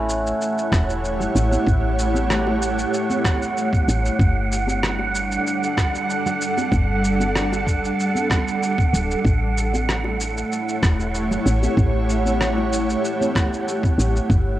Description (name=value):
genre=organic downtempo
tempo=95 BPM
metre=4/4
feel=straight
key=A mixolydian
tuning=A4 = 438 Hz
part: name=ethereal airy pad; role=sustained chords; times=0.0-14.6 s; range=G3 to F#5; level=-24 LUFS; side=equal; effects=ensemble chorus, built-in reverb, tremolo, sidechain pumping, cassette tape
part: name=santur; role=arpeggios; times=0.0-2.2 s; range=A3 to E4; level=-27 LUFS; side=equal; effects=cassette tape, analog delay
part: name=woody FM bass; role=bass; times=0.0-14.6 s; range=D1 to A1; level=-22 LUFS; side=equal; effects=sidechain pumping
part: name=wind-like tuned noise texture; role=texture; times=0.0-14.6 s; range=F#5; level=-26 LUFS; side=right 6 dB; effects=built-in reverb, cassette tape
part: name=electronic shaker and rim click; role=drums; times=0.1-14.4 s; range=none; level=-28 LUFS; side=equal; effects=studio reverb, cassette tape
part: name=electronic kick drum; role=drums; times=0.7-14.4 s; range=none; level=-20 LUFS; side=equal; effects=studio reverb, cassette tape
part: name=bongos and congas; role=percussion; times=0.9-14.1 s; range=none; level=-30 LUFS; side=left 2 dB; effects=none
room=moderate spring reverb, RT60 2.0 s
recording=home recording on cassette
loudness=-18 LUFS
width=side -14 dB against mid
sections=0.0-14.6 A section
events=none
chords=0.0 A7; 4.2 Gsus2; 9.2 A7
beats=0.41 1.04 | 1.67 2.30 2.93 3.57 | 4.20 4.83 5.46 6.09 | 6.72 7.36 7.99 8.62 | 9.25 9.88 10.51 11.14 | 11.78 12.41 13.04 13.67 | 14.30